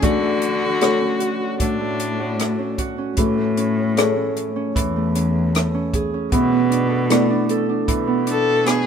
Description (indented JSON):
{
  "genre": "acoustic folk-pop ballad",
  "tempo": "76 BPM",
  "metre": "4/4",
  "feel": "straight",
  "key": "unclear",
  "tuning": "A4 = 441 Hz",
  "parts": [
    { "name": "clear viola", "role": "second line", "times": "0.0-2.7, 8.3-8.9 s", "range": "D4 to A4", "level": "-22 LUFS", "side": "left 3 dB", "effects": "none" },
    { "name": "felt-muted upright piano", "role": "accompaniment", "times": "0.0-8.9 s", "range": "A3 to F#5", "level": "-24 LUFS", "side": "left 4 dB", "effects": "none" },
    { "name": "Celtic harp", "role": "arpeggios", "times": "0.0-8.9 s", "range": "E3 to A4", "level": "-23 LUFS", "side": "right 3 dB", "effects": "none" },
    { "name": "dark cello", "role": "bass", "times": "0.0-8.9 s", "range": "E2 to D3", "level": "-23 LUFS", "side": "equal", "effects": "none" },
    { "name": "compact cocktail drum kit", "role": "drums", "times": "0.0-8.9 s", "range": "hi-hat, kick drum, rim click", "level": "-23 LUFS", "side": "equal", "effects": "none" }
  ],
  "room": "little or no reverb",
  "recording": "minimal, uncompressed stereo recording",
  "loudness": "-17 LUFS",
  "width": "side -7 dB against mid",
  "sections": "0.0-8.9 A section",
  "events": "viola solo 0.0-8.9",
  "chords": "0.0 Dmaj7; 3.2 Amaj7; 6.3 E7sus4/B"
}